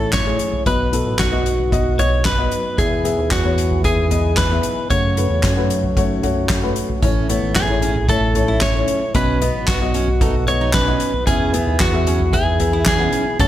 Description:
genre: piano-driven pop.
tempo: 113 BPM.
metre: 4/4.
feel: straight.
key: E major.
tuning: A4 = 441 Hz.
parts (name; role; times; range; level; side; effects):
electric guitar at the edge of break-up; melody; 0.0-13.5 s; F#4 to C#5; -21 LUFS; equal; none.
dark baby grand piano; accompaniment; 0.0-13.5 s; A2 to F#5; -23 LUFS; left 4 dB; none.
tonewheel organ; sustained chords; 0.0-13.5 s; E3 to B4; -30 LUFS; equal; slow rotary speaker.
chorused synth bass; bass; 0.0-13.5 s; G#1 to F#2; -21 LUFS; equal; none.
soft-mallet drum kit; drums; 0.1-13.5 s; handclaps, hi-hat, kick drum, snare drum, toms; -20 LUFS; right 1 dB; none.
picked steel-string acoustic guitar; riff; 7.0-13.5 s; B3 to E4; -26 LUFS; right 5 dB; none.
room: light reverb.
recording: none.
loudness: -15 LUFS.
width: side -12 dB against mid.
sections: 0.0-13.5 A section.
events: none.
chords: 0.0 A; 0.7 B; 2.8 E; 4.9 F#m; 7.0 A; 9.2 B; 11.3 E.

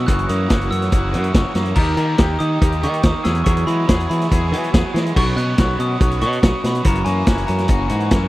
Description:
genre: indie rock.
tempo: 142 BPM.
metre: 4/4.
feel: straight.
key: unclear.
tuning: A4 = 442 Hz.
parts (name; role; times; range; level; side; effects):
glockenspiel with soft plastic mallets; melody; 0.0-8.3 s; G#5 to F#6; -25 LUFS; equal; slapback echo.
string machine, full ensemble; sustained chords; 0.0-8.3 s; F#4 to B5; -35 LUFS; equal; none.
biting overdriven guitar; riff; 0.0-8.3 s; E2 to G#4; -27 LUFS; right 7 dB; analog chorus, slapback echo.
twangy electric guitar; riff; 0.0-8.3 s; E3 to G#4; -26 LUFS; left 6 dB; none.
modern bright fingered electric bass; bass; 0.0-8.3 s; F#1 to E3; -20 LUFS; equal; none.
vintage drum kit; drums; 0.1-8.2 s; crash cymbal, hi-hat, kick drum, snare drum; -17 LUFS; equal; none.
room: little or no reverb.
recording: dry, close 1970s-style studio recording.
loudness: -15 LUFS.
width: side -17 dB against mid.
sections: 0.0-8.3 A section.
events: none.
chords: 0.1 F#7; 1.8 D#; 3.2 Eadd9; 5.1 Bsus2; 6.8 F#7.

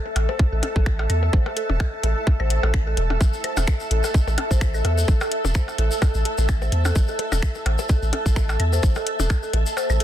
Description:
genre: minimal techno.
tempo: 128 BPM.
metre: 4/4.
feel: swing 56% on 16ths.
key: unclear.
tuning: A4 = 440 Hz.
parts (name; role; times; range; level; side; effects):
granular cloud pad; texture; 0.0-10.0 s; A4 to A5; -28 LUFS; equal; built-in reverb, sidechain pumping.
percussion blips and claves; percussion; 0.1-10.0 s; none; -30 LUFS; left 4 dB; small room ambience, ping-pong delay.
punchy sub bass; bass; 0.2-10.0 s; E1 to E2; -21 LUFS; equal; tube saturation, sidechain pumping.
garage drum kit; drums; 0.2-10.0 s; finger snaps, hi-hat; -31 LUFS; left 2 dB; small room ambience, soft clipping on snare.
dark detuned synth bell; riff; 0.3-10.0 s; A4 to C5; -31 LUFS; left 1 dB; chorus, phaser, sidechain pumping, tape echo.
electronic kick drum; drums; 0.4-9.4 s; none; -19 LUFS; equal; small room ambience.
maracas; percussion; 3.2-10.0 s; none; -34 LUFS; left 4 dB; none.
room: little or no reverb.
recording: dense, heavily limited modern master.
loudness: -19 LUFS.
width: side -11 dB against mid.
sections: 0.0-10.0 A section.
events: kick drops out 9.8.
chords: 0.0 A5.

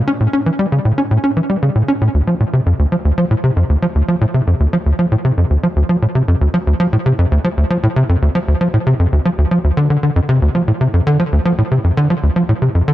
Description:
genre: ambient.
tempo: 116 BPM.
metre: 4/4.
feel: straight.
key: D minor.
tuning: A4 = 444 Hz.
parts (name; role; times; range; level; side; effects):
tight sequencer bass; solo; 0.1-12.9 s; D2 to C#4; -12 LUFS; equal; lush chorus, analog delay.
room: light reverb.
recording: none.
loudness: -12 LUFS.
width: side -15 dB against mid.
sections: 0.0-2.1 A section; 2.1-12.9 B section.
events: none.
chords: none.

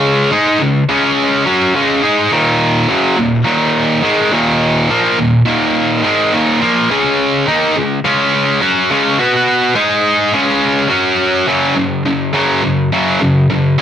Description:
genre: rock.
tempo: 105 BPM.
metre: 4/4.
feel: straight.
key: unclear.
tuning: A4 = 440 Hz.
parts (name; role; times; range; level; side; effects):
high-gain distorted guitar; solo; 0.0-13.8 s; Eb2 to B4; -11 LUFS; equal; distortion, cassette tape.
room: light reverb, digital ambience.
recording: home recording on cassette.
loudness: -11 LUFS.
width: side -9 dB against mid.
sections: 0.0-11.5 A section; 11.5-13.8 B section.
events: none.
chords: 0.0 Db5; 2.3 Ebm; 6.9 Db5; 9.2 B5; 9.8 Ab5; 10.3 Db5; 10.9 Gb5.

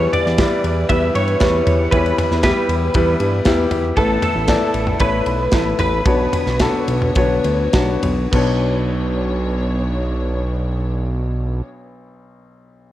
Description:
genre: piano-driven pop.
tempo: 100-117 BPM.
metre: 4/4.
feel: straight.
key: B minor.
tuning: A4 = 441 Hz.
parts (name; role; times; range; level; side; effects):
direct-recorded clean electric guitar; melody; 0.0-7.7 s; A4 to E5; -22 LUFS; right 1 dB; ensemble chorus.
clear concert grand piano; accompaniment; 0.0-12.9 s; B1 to D5; -20 LUFS; left 2 dB; none.
dark studio string section; sustained chords; 0.0-11.6 s; B2 to C#5; -29 LUFS; right 1 dB; none.
fat analog bass; bass; 0.0-11.6 s; A1 to G2; -20 LUFS; right 1 dB; none.
modern studio drum kit; drums; 0.1-8.5 s; crash cymbal, kick drum, ride cymbal, snare drum, toms; -21 LUFS; equal; none.
room: light reverb, studio reverb.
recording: worn, warbling old tape, cassette tape, warbly pitch drift.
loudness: -15 LUFS.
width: side -13 dB against mid.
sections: 0.0-8.3 A section; 8.3-12.9 B section.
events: slowing down 4.0-8.3.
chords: 0.0 Em; 4.0 Asus2; 6.1 Bmadd9.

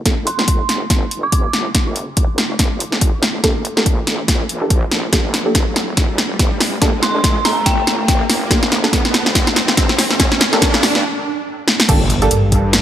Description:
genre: deep dubstep.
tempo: 142 BPM.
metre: 4/4.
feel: swing 57% on 16ths, half-time.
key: G minor.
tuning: A4 = 440 Hz.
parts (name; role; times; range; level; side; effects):
wobble bass; bass; 0.0-12.8 s; F1 to G2; -23 LUFS; equal; chorus, high-pass filter.
riser and impact; sound effects; 0.8-12.8 s; none; -23 LUFS; right 1 dB; none.
filtered dub chord stab; stabs; 0.1-12.4 s; Bb3 to A4; -22 LUFS; right 1 dB; chorus, dub echo.
deep house drum kit; drums; 0.1-12.8 s; crash cymbal, hi-hat, snare drum; -16 LUFS; equal; overdrive.
electronic kick drum; drums; 0.1-12.6 s; none; -17 LUFS; equal; overdrive.
dark detuned synth bell; melody; 0.3-1.7, 7.0-8.1 s; G5 to D6; -23 LUFS; right 1 dB; chorus, low-pass filter, dub echo.
room: light reverb, digital ambience.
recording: none.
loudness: -13 LUFS.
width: side -11 dB against mid.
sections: 0.0-11.9 A section.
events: build-up 0.0-11.9; drum fill 0.0-11.0, 11.7; filter sweep on synth stab 0.0-11.9; filter sweep on synth bell 0.0-11.9; riser 0.8-11.0; break 11.0-11.9; impact 11.9-12.8.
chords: 0.0 Gmadd9.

